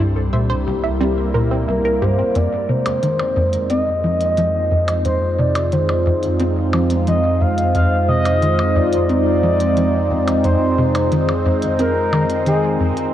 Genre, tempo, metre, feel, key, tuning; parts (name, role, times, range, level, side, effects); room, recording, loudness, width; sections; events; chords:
ambient, sequencer-driven space music; 89 BPM; 4/4; straight; F dorian; A4 = 441 Hz
phased analog pad; sustained chords; 0.0-13.1 s; G3 to C5; -20 LUFS; equal; phaser, chorus
wide unison pluck; arpeggios; 0.0-2.3 s; C4 to E5; -26 LUFS; right 3 dB; auto-pan, tape echo
tight sequencer bass; riff; 0.0-12.9 s; C2 to C4; -21 LUFS; equal; lush chorus, tape echo
warm sub bass; bass; 0.0-13.1 s; C2 to F2; -22 LUFS; equal; transformer saturation
expressive synth lead; melody; 1.7-12.9 s; Ab4 to F5; -20 LUFS; equal; chorus, tape echo
electronic hi-hat and percussion blips; percussion; 2.4-13.1 s; -29 LUFS; equal; tape echo
wet huge ambient reverb, RT60 8.7 s; worn, warbling old tape, cassette tape, warbly pitch drift; -15 LUFS; side -11 dB against mid
0.0-2.4 A section; 2.4-13.1 B section
0.0 C7; 2.4 Fm7